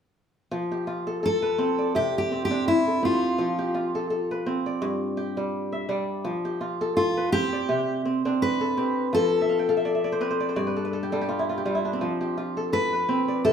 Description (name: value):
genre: west african traditional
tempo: 84 BPM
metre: 4/4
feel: swing 55% on 16ths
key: F lydian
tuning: A4 = 440 Hz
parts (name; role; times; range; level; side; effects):
- kora; arpeggios; 0.5-13.5 s; G2 to G5; -26 LUFS; right 1 dB; none
- fingerpicked steel-string acoustic guitar; melody; 1.3-13.5 s; E4 to B4; -25 LUFS; left 2 dB; none
room: wet stone room reverb, RT60 1.0 s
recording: band playing live in one room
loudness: -23 LUFS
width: side -7 dB against mid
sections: 0.5-13.5 A section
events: kora fill 9.4-12.0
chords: 0.5 F; 2.0 C5; 3.4 F; 4.8 G5; 6.3 F; 7.7 C5; 9.1 F; 10.6 N.C.; 12.0 F